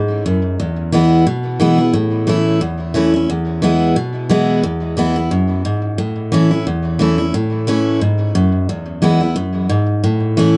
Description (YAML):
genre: bluegrass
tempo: 178 BPM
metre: 4/4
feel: swing 56% on 8ths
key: A major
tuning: A4 = 440 Hz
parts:
  - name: picked steel-string acoustic guitar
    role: solo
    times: 0.0-10.6 s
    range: E2 to E4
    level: -16 LUFS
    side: equal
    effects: tape echo
room: moderate studio reverb, RT60 0.5 s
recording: dark, warm production, nothing above 10.8 kHz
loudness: -16 LUFS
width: mono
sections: 0.0-7.3 A section; 7.3-10.6 A section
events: none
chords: 0.0 N.C.; 0.6 E; 1.9 A; 3.3 E; 6.0 A; 8.7 E; 10.0 A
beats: 0.25 | 0.59 0.93 1.26 1.60 | 1.94 2.28 2.61 2.95 | 3.29 3.63 3.96 4.30 | 4.64 4.97 5.31 5.65 | 5.99 6.32 6.66 7.00 | 7.33 7.67 8.01 8.35 | 8.68 9.02 9.36 9.69 | 10.03 10.37